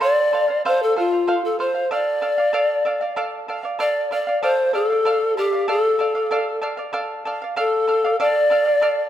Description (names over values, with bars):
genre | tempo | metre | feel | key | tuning
andean folk | 64 BPM (dotted quarters) | 6/8 | straight | D minor pentatonic | A4 = 440 Hz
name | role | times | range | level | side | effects
breathy polished pan flute | melody | 0.0-9.1 s | F4 to D5 | -18 LUFS | left 1 dB | none
charango | accompaniment | 0.0-9.1 s | A4 to F5 | -24 LUFS | right 2 dB | none
room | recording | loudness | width
moderate concert hall reverb, RT60 2.1 s | minimal, uncompressed stereo recording | -18 LUFS | side -11 dB against mid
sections
0.0-3.8 A section; 3.8-9.1 A section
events
none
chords
0.0 F; 1.9 Dm